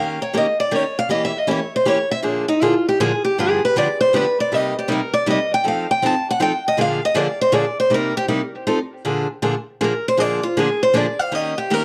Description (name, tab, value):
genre	jazz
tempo	158 BPM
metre	3/4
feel	swing 63% on 8ths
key	Bb mixolydian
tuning	A4 = 439 Hz
part	picked steel-string acoustic guitar	melody	0.0-11.8 s	Eb4 to A5	-21 LUFS	equal	analog delay
part	picked steel-string acoustic guitar	accompaniment	0.0-11.8 s	G2 to Bb4	-23 LUFS	equal	none
room	moderate studio reverb, RT60 0.6 s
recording	cassette tape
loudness	-19 LUFS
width	mono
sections	0.0-9.0 A section; 9.0-11.8 A section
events	steel-string acoustic guitar solo 0.0-9.0, 9.0-11.8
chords	0.0 Eb7; 1.1 Edim7; 2.2 Bb7; 3.4 G7; 4.5 Cm7; 5.6 F7; 6.8 Bb7; 7.9 Cm7; 8.7 F7; 9.0 Bb7; 11.3 Eb7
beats	0.35 0.72 | 1.10 1.48 1.86 | 2.24 2.62 3.00 | 3.37 3.75 4.13 | 4.51 4.89 5.26 | 5.64 6.02 6.40 | 6.78 7.16 7.53 | 7.91 8.29 8.67 | 9.05 9.43 9.81 | 10.19 10.56 10.94 | 11.32 11.70